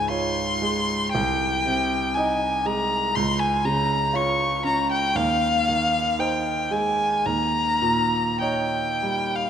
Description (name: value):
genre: classical, romantic duo for violin and grand piano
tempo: 46-61 BPM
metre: 4/4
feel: rubato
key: Ab major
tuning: A4 = 440 Hz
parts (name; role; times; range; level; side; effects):
- rich violin; melody; 0.0-9.5 s; F5 to Db6; -22 LUFS; left 2 dB; none
- clear concert grand piano; accompaniment; 0.0-9.5 s; C2 to Eb5; -25 LUFS; right 2 dB; none
room: moderate concert hall reverb, RT60 2.0 s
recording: none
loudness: -20 LUFS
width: side -8 dB against mid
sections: 0.0-9.5 A section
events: none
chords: 0.0 Db; 1.1 Ab/C; 3.2 Db6; 5.2 Ab/Eb; 7.3 Eb7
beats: 0.09 | 1.13 2.16 3.16 4.15 | 5.18 6.20 7.26 8.41